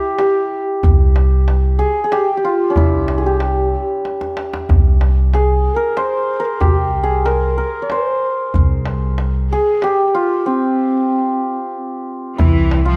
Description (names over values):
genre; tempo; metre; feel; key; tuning
Persian modal ensemble; 93 BPM; 3/4; straight; C dastgah homayun; A4 = 440 Hz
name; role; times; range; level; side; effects
santur; melody; 0.0-13.0 s; C4 to Db5+45c; -21 LUFS; equal; none
breathy mellow low ney; second line; 0.0-13.0 s; C4 to C5; -23 LUFS; equal; none
tombak; percussion; 0.2-12.9 s; none; -19 LUFS; equal; none
upright bass; bass; 0.8-13.0 s; C2; -18 LUFS; equal; none
clear studio cello section; second line; 12.4-13.0 s; E3 to F3; -23 LUFS; equal; none
room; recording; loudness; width
light reverb; close, detailed microphones; -16 LUFS; mono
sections
0.0-12.4 A section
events
drum fill 4.0-4.7; break 10.5-12.4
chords
none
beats
0.19 | 0.83 1.47 2.12 | 2.76 3.40 4.04 | 4.68 5.33 5.97 | 6.61 7.26 7.90 | 8.54 9.18 9.83 | 10.47 11.11 11.75 | 12.39